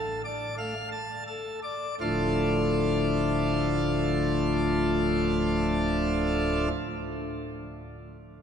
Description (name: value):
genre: classical, organ toccata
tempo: free time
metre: none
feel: none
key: D minor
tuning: A4 = 441 Hz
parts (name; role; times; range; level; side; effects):
- pipe organ, plenum; solo; 0.0-6.7 s; D1 to A5; -25 LUFS; equal; none
room: wet cathedral reverb, RT60 5.0 s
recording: none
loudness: -25 LUFS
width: side -8 dB against mid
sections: 0.0-2.0 A section; 2.0-8.0 B section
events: slowing down 0.0-2.0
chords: 0.0 Dm